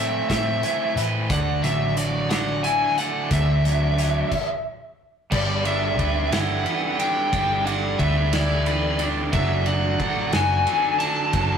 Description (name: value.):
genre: indie rock.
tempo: 60 BPM (dotted quarters).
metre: 6/8.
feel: straight.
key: unclear.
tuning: A4 = 440 Hz.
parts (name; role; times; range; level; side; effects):
lead guitar through a small cranked amp; melody; 0.0-11.6 s; D5 to A5; -24 LUFS; left 1 dB; overdrive.
biting overdriven guitar; riff; 0.0-11.6 s; D3 to G4; -31 LUFS; left 4 dB; none.
cranked stack guitar; riff; 0.0-11.6 s; D3 to B4; -26 LUFS; right 3 dB; overdrive.
hollow-body short-scale picked electric bass; bass; 0.0-11.6 s; F#1 to A2; -25 LUFS; equal; none.
loose indie drum kit; drums; 0.3-11.5 s; crash cymbal, hi-hat, kick drum, ride cymbal, snare drum; -28 LUFS; equal; none.
room: moderate stone room reverb, RT60 1.4 s.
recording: rough rehearsal-room recording, tube saturation.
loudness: -20 LUFS.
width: side -7 dB against mid.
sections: 0.0-5.3 A section; 5.3-11.6 B section.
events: stop 4.3-5.3.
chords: 0.0 Amadd9; 1.3 Dadd9; 5.3 G6; 9.3 D/F#.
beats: 0.30 | 1.31 2.31 | 3.32 4.32 | 5.33 6.33 | 7.33 8.34 | 9.34 10.34 | 11.35.